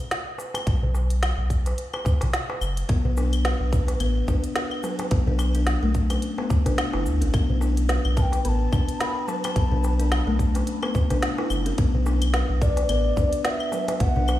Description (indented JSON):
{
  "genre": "organic downtempo",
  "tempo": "108 BPM",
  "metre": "4/4",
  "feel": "swing 57% on 16ths",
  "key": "B minor",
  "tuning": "A4 = 439 Hz",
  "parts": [
    { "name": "organic electronic drum kit", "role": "drums", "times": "0.0-14.4 s", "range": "cabasa, claves, hi-hat, snare drum", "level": "-31 LUFS", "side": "equal", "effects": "none" },
    { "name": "darbuka", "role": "percussion", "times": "0.4-14.4 s", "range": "none", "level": "-32 LUFS", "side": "equal", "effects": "none" },
    { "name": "round analog bass", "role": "bass", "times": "0.7-14.4 s", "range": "F#1 to D2", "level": "-23 LUFS", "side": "equal", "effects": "none" },
    { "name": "electronic kick drum", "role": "drums", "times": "0.7-14.1 s", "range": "none", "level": "-23 LUFS", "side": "equal", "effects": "none" },
    { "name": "buzzing kalimba", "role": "arpeggios", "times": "2.9-14.2 s", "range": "F#3 to B4", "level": "-28 LUFS", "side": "left 2 dB", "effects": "ping-pong delay" },
    { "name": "breathy bass bansuri", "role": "melody", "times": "8.2-14.4 s", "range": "D5 to B5", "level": "-30 LUFS", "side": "left 2 dB", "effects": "ping-pong delay" }
  ],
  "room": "little or no reverb",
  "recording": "played on a big sound system in a bare room, stone room reverb",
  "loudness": "-21 LUFS",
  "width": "side -14 dB against mid",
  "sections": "0.0-14.4 A section",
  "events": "none",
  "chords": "0.0 Bm"
}